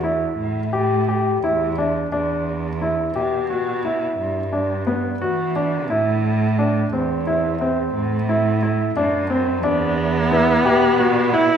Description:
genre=contemporary instrumental, chamber music in an uneven meter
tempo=176 BPM (eighths)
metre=11/8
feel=straight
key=A dorian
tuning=A4 = 436 Hz
part: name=clear grand piano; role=arpeggios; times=0.0-11.6 s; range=B3 to G4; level=-20 LUFS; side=left 1 dB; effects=none
part: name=rich cello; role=bass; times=0.0-11.6 s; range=E2 to E3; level=-23 LUFS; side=right 3 dB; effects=none
part: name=clear viola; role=second line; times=9.6-11.6 s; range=B3 to E4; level=-18 LUFS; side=right 1 dB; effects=none
part: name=worn celesta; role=texture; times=10.3-11.6 s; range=B4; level=-26 LUFS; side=left 3 dB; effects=none
room=wet recital hall reverb, RT60 1.5 s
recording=heard from further back in the room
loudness=-18 LUFS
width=side -8 dB against mid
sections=0.0-2.1 A section; 2.1-11.6 B section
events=none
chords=0.0 A5; 2.1 Em7; 4.2 Gmaj7; 5.9 Am; 9.6 Em7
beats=0.04 0.38 0.73 1.08 1.43 1.78 | 2.12 2.47 2.81 3.15 3.50 3.84 4.19 4.53 4.87 5.22 5.56 | 5.90 6.24 6.58 6.92 7.26 7.60 7.94 8.28 8.62 8.96 9.30 | 9.64 9.98 10.32 10.66 10.99 11.33

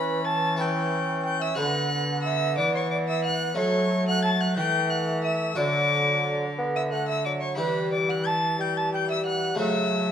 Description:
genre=classical, renaissance-style consort dance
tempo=60 BPM (dotted quarters)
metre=6/8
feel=straight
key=E dorian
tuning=A4 = 435 Hz
part: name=rich violin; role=melody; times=0.0-10.1 s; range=B5 to A6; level=-28 LUFS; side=left 5 dB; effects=none
part: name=mellow hollow tenor recorder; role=second line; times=0.0-10.1 s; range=B4 to A5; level=-29 LUFS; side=right 4 dB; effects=none
part: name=harpsichord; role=accompaniment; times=0.0-10.1 s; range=C#3 to B4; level=-33 LUFS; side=left 1 dB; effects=none
part: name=mellow bassoon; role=accompaniment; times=0.0-10.1 s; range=F#3 to C#4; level=-31 LUFS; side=left 1 dB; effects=none
part: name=rich cello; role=bass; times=0.0-10.1 s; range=D3 to F#3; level=-29 LUFS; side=equal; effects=none
room=wet stone room reverb, RT60 1.2 s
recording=none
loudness=-23 LUFS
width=side -8 dB against mid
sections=0.0-10.1 A section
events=none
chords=0.0 Em; 1.6 Bm/D; 3.6 F#m; 5.6 D; 7.6 Em; 9.6 F#m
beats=0.58 | 1.58 2.57 | 3.57 4.57 | 5.57 6.58 | 7.59 8.59 | 9.59

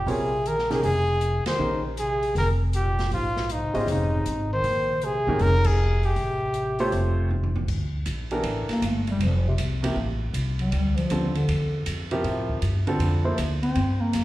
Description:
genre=modal jazz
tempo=158 BPM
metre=4/4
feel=swing 66% on 8ths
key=Bb dorian, D minor from 7.7 s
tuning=A4 = 438 Hz
part: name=breathy trumpet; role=melody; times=0.0-7.3 s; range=Eb4 to C5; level=-26 LUFS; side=equal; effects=slapback echo
part: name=dark bass clarinet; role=second line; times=0.0-14.2 s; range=Ab2 to C4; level=-29 LUFS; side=left 1 dB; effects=none
part: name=upright bass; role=bass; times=0.0-14.2 s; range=F1 to A2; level=-25 LUFS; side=equal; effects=none
part: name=warm upright piano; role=accompaniment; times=0.1-13.4 s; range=C3 to Eb5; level=-28 LUFS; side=right 1 dB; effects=slapback echo
part: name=open jazz drum kit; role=drums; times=0.1-14.2 s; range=crash cymbal, hi-hat, kick drum, ride cymbal, snare drum, toms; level=-35 LUFS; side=right 1 dB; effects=none
room=light reverb, small room ambience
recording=live gig heard through the venue's PA, club reverb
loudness=-22 LUFS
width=side -16 dB against mid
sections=0.0-7.7 A section; 7.7-14.2 B section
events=band accent 1.4, 5.6; drum fill 7.3-7.7; bass clarinet solo 7.7-14.2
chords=0.0 Bb9sus4; 6.2 A7alt; 7.7 Dm9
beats=| 0.08 0.46 0.84 1.22 | 1.60 1.98 2.36 2.74 | 3.12 3.50 3.88 4.26 | 4.64 5.02 5.40 5.78 | 6.16 6.54 6.92 7.30 | 7.68 8.06 8.44 8.82 | 9.20 9.58 9.96 10.34 | 10.72 11.10 11.48 11.86 | 12.24 12.62 13.01 13.39 | 13.77 14.15

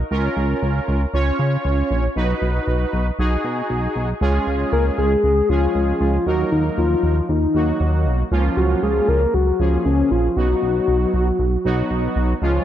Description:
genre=synth-pop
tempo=117 BPM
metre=4/4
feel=straight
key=unclear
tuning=A4 = 440 Hz
part: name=chorused synth bass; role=bass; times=0.0-12.6 s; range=Bb1 to Db3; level=-20 LUFS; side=equal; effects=none
part: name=analog synth brass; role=accompaniment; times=0.1-12.6 s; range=F3 to Db5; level=-23 LUFS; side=right 1 dB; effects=chorus
part: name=soft octave-layered synth lead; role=melody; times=4.7-12.2 s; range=Db4 to Bb4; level=-20 LUFS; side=left 2 dB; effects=chorus, tape echo
room=moderate lush hall reverb, RT60 2.5 s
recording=dark, warm production, nothing above 10.7 kHz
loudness=-17 LUFS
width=side -11 dB against mid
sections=0.0-4.2 A section; 4.2-12.6 B section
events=none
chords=0.1 Bbm/Db; 2.2 B; 4.2 Db; 6.3 Ebm; 8.3 Bbm/Db; 10.4 B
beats=| 0.11 0.62 1.14 1.65 | 2.16 2.67 3.19 3.70 | 4.21 4.72 5.24 5.75 | 6.26 6.78 7.29 7.80 | 8.31 8.83 9.34 9.85 | 10.37 10.88 11.39 11.90 | 12.42

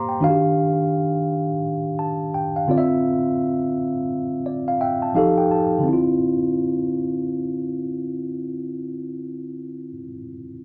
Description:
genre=R&B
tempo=85 BPM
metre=4/4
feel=swing 62% on 16ths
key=D minor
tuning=A4 = 440 Hz
part: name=mellow tine electric piano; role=accompaniment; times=0.0-10.6 s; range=D3 to D6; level=-23 LUFS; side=equal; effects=none
room=wet club reverb, RT60 0.5 s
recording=none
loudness=-22 LUFS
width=mono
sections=0.0-5.9 A section; 5.9-8.7 B section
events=tine electric piano fill 4.5-5.9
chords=0.2 Ebmaj9; 2.7 Dm9; 5.2 F9; 5.9 Dm9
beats=| 0.22 0.92 1.63 2.33 | 3.04 3.75 4.45 5.16 | 5.86 6.57 7.28 7.98

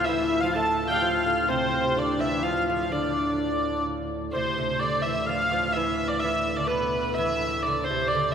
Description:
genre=medieval dance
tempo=126 BPM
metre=3/4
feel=straight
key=D dorian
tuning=A4 = 438 Hz
part: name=rich hurdy-gurdy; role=melody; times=0.0-8.3 s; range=B4 to A5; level=-25 LUFS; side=equal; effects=none
part: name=breathy bass recorder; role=second line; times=0.0-3.8 s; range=C4 to A4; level=-30 LUFS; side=left 3 dB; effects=none
part: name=lute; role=second line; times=0.0-8.3 s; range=B2 to A3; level=-32 LUFS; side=right 2 dB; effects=none
part: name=pipe organ, cornet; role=drone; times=0.0-8.3 s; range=D2 to A2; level=-32 LUFS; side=right 1 dB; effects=none
room=wet church reverb, RT60 3.5 s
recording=band playing live in one room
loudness=-23 LUFS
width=side -8 dB against mid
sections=0.0-4.3 A section; 4.3-8.3 A section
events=none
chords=none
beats=| 0.06 0.54 1.02 | 1.49 1.97 2.44 | 2.92 3.39 3.87 | 4.34 4.82 5.29 | 5.76 6.24 6.71 | 7.18 7.66 8.13

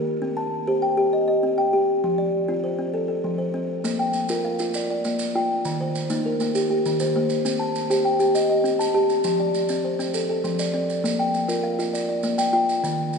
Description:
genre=southern african traditional, mbira-style interlocking cycle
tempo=133 BPM (dotted quarters)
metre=12/8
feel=straight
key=Bb major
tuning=A4 = 441 Hz
part: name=buzzing kalimba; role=arpeggios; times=0.0-13.1 s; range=Eb3 to A5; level=-21 LUFS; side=left 1 dB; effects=none
part: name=maracas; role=percussion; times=3.8-13.2 s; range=none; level=-33 LUFS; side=right 7 dB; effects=none
room=wet church reverb, RT60 2.7 s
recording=recorded in a church or concert hall, nothing above 10.3 kHz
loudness=-20 LUFS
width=side -5 dB against mid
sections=0.0-3.8 A section; 3.8-13.2 A section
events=none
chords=0.2 Cm; 2.0 F; 3.8 Bb; 5.6 Eb; 7.4 Cm; 9.2 F; 11.0 Bb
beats=| 0.23 0.68 1.13 1.58 | 2.04 2.49 2.94 3.39 | 3.85 4.30 4.75 5.20 | 5.65 6.10 6.55 7.00 | 7.45 7.90 8.35 8.79 | 9.24 9.69 10.14 10.59 | 11.04 11.49 11.94 12.38 | 12.83

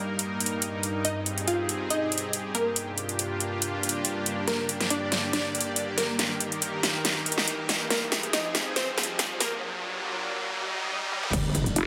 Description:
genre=heavy wobble dubstep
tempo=140 BPM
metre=4/4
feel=swing 54% on 16ths, half-time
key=unclear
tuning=A4 = 440 Hz
part: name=unison pluck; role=melody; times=0.0-9.6 s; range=Bb3 to F5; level=-33 LUFS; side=equal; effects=delay
part: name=supersaw pad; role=sustained chords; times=0.0-11.9 s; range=G2 to Eb5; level=-34 LUFS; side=equal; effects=sidechain pumping, low-pass filter
part: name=riser and impact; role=sound effects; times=0.4-11.9 s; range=none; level=-39 LUFS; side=equal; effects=none
part: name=dubstep drum kit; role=drums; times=0.2-11.9 s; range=crash cymbal, hi-hat, snare drum, toms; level=-30 LUFS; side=equal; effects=high-pass filter on hats, high-pass filter on snare, high-pass filter on toms, high-pass filter on cymbals
part: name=metallic wobble bass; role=bass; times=11.3-11.7 s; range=G1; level=-30 LUFS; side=equal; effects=chorus, overdrive
part: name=electronic kick drum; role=drums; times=11.3-11.6 s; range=none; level=-35 LUFS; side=equal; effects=distortion
part: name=vowel-sweep wobble bass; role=bass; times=11.8-11.9 s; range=F1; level=-25 LUFS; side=equal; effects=chorus, overdrive
room=wet digital room reverb, RT60 1.0 s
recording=dense, heavily limited modern master, high-pass filter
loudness=-28 LUFS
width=mono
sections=0.0-11.3 A section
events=build-up 0.0-11.3; riser 0.4-11.3; drum fill 4.5-9.6, 11.1; break 9.6-11.3; impact 11.3-11.9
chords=0.0 Eb/G; 1.0 Ab/G; 2.8 Bb/G; 4.5 Gm; 6.2 Eb/G; 7.9 Ab/G; 9.6 Bb/G; 10.5 Absus2; 11.3 Gm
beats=0.19 0.62 | 1.05 1.48 1.91 2.33 | 2.76 3.19 3.62 4.05 | 4.48 4.91 5.33 5.76 | 6.19 6.62 7.05 7.48 | 7.91 8.33 8.76 9.19 | 9.62 10.05 10.48 10.90 | 11.33 11.76

